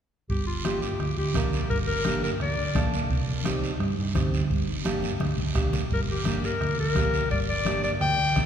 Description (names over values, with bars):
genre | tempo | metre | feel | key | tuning
latin, cumbia | 171 BPM | 4/4 | straight | G minor | A4 = 440 Hz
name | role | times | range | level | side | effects
clear clarinet | melody | 0.3-2.9, 5.9-8.5 s | F4 to G5 | -28 LUFS | left 4 dB | none
hollow-body short-scale fingered electric bass | bass | 0.3-8.5 s | G1 to G2 | -28 LUFS | right 1 dB | none
bombo | percussion | 0.3-8.5 s | none | -32 LUFS | right 1 dB | none
congas | percussion | 0.3-8.5 s | none | -34 LUFS | left 3 dB | none
guiro | percussion | 0.3-8.5 s | none | -36 LUFS | right 6 dB | none
nylon-string guitar | accompaniment | 0.6-8.5 s | Bb3 to Bb4 | -32 LUFS | right 1 dB | none
room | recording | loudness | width
wet cathedral reverb, RT60 4.1 s | recorded in a church or concert hall | -24 LUFS | side -8 dB against mid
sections
0.3-8.5 A section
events
drum fill 5.0-5.9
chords
0.3 Gm; 3.1 Cm; 4.5 Gm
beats
| 0.29 0.64 0.99 1.34 | 1.70 2.05 2.40 2.75 | 3.10 3.45 3.80 4.15 | 4.50 4.86 5.21 5.56 | 5.91 6.26 6.61 6.96 | 7.31 7.66 8.01 8.36